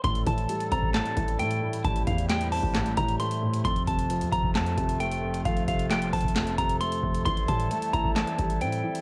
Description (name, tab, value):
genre	hip hop, trap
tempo	133 BPM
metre	4/4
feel	half-time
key	A minor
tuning	A4 = 440 Hz
part	clean electric guitar	melody	0.0-9.0 s	F5 to C6	-32 LUFS	equal	cassette tape
part	dark concert grand piano	accompaniment	0.0-9.0 s	F2 to E4	-33 LUFS	equal	none
part	warm woodwind section	sustained chords	0.0-9.0 s	C3 to A4	-39 LUFS	equal	plate reverb
part	hard-hitting 808-style bass	bass	0.0-8.8 s	F1 to A2	-35 LUFS	equal	none
part	booming analog drum machine	drums	0.0-9.0 s	handclaps, hi-hat, kick drum, snare drum	-32 LUFS	equal	cassette tape
part	silver concert flute	second line	7.3-8.1 s	A5 to C6	-37 LUFS	equal	tape echo, plate reverb
room	light reverb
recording	home recording on cassette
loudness	-27 LUFS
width	mono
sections	0.0-9.0 A section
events	none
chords	0.0 Am7; 3.6 F; 7.3 Am7